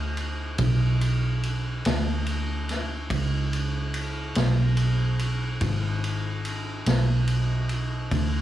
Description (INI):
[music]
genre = slow blues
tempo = 48 BPM (dotted quarters)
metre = 12/8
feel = straight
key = E mixolydian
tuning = A4 = 440 Hz
[part]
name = vintage muted fingered electric bass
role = bass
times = 0.0-8.4 s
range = G#1 to D2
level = -24 LUFS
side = right 1 dB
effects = none
[part]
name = vintage drum kit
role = drums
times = 0.2-8.3 s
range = kick drum, ride cymbal, snare drum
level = -30 LUFS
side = equal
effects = none
[sound]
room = little or no reverb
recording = small room ambience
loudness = -23 LUFS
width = side -12 dB against mid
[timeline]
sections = 0.0-8.4 A section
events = none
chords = none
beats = | 0.60 1.85 3.11 4.36 | 5.62 6.87 8.12